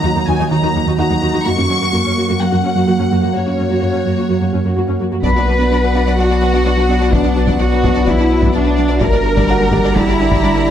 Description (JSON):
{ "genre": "cinematic, hybrid orchestral and electronic film score", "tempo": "127 BPM", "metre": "4/4", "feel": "straight", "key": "B harmonic minor", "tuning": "A4 = 439 Hz", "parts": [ { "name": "dark symphonic violin section", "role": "melody", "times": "0.0-5.0 s", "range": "C#5 to C#6", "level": "-21 LUFS", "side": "left 3 dB", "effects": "none" }, { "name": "warm symphonic viola section", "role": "accompaniment", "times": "0.0-10.7 s", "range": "F#3 to F#4", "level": "-23 LUFS", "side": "right 1 dB", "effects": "none" }, { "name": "warbly tape-like pad", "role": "sustained chords", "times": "0.0-10.7 s", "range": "D3 to F#5", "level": "-22 LUFS", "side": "left 1 dB", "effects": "chorus, built-in reverb" }, { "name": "harp-like synth pluck", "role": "arpeggios", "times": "0.0-10.7 s", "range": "D#3 to B4", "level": "-20 LUFS", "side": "right 4 dB", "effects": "chorus, tape echo" }, { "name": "rich symphonic cello section", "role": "bass", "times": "0.0-10.7 s", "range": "D#2 to B4", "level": "-18 LUFS", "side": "right 1 dB", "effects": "none" }, { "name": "warm concert grand piano", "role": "texture", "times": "0.0-10.7 s", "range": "F#4 to F#5", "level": "-28 LUFS", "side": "left 2 dB", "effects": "tape echo" }, { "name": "rich symphonic violin section", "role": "second line", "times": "5.2-10.7 s", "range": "Bb4 to Bb5", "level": "-24 LUFS", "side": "left 1 dB", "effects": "none" }, { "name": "warm French horn section", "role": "sustained chords", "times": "5.2-10.7 s", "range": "G3 to B3", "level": "-22 LUFS", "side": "left 7 dB", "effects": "none" }, { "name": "pure sine sub bass", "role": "bass", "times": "5.2-10.7 s", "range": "G1 to B1", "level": "-17 LUFS", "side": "equal", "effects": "none" }, { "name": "taiko ensemble", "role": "drums", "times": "5.2-10.7 s", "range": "none", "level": "-19 LUFS", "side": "equal", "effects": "none" } ], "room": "light reverb", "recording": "none", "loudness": "-12 LUFS", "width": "side -10 dB against mid", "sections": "0.0-5.2 A section; 5.2-10.7 A section", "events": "none", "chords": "0.0 D#m; 1.5 F#; 5.2 Bm; 9.0 Gm", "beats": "0.04 0.51 0.99 | 1.46 1.93 2.40 2.88 | 3.35 3.82 4.29 4.76 | 5.24 5.71 6.18 6.66 | 7.13 7.60 8.07 8.54 | 9.02 9.49 9.96 10.43" }